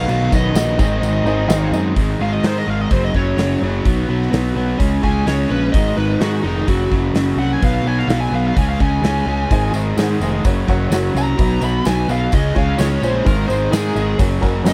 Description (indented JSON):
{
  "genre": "classic rock",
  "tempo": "128 BPM",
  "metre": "4/4",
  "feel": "straight",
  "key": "unclear",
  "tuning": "A4 = 440 Hz",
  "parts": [
    { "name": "smooth overdriven lead guitar", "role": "melody", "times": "0.0-14.7 s", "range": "Eb4 to B5", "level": "-26 LUFS", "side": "equal", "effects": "none" },
    { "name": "honky-tonk upright piano", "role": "accompaniment", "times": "0.0-1.9, 9.5-14.7 s", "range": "Db4 to Gb5", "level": "-29 LUFS", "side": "equal", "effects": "none" },
    { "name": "overdriven electric guitar", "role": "riff", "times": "0.0-14.7 s", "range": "Gb2 to D#4", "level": "-23 LUFS", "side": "equal", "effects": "none" },
    { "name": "fuzz picked electric bass", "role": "bass", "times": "0.0-14.7 s", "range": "F1 to Ab2", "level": "-22 LUFS", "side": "equal", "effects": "overdrive" },
    { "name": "big rock drum kit", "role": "drums", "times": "0.1-14.7 s", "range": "crash cymbal, hi-hat, kick drum, snare drum", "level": "-21 LUFS", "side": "equal", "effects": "none" },
    { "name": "tambourine", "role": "percussion", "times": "0.1-1.8, 9.7-14.7 s", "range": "none", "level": "-39 LUFS", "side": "equal", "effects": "none" }
  ],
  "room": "little or no reverb",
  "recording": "dry, close 1970s-style studio recording",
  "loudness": "-17 LUFS",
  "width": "mono",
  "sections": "0.0-2.0 A section; 2.0-14.7 B section",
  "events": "lead electric guitar solo 2.0-14.7",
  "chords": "0.0 Badd9; 0.8 Ab; 2.0 Ab5; 2.9 Gb5; 3.8 B5; 4.8 Db5; 5.7 Ab5; 6.7 Gb5; 7.6 B5; 8.6 Db5; 9.5 Ab; 10.4 Gb; 11.4 B; 12.3 Db; 13.3 Ab; 14.2 Gb"
}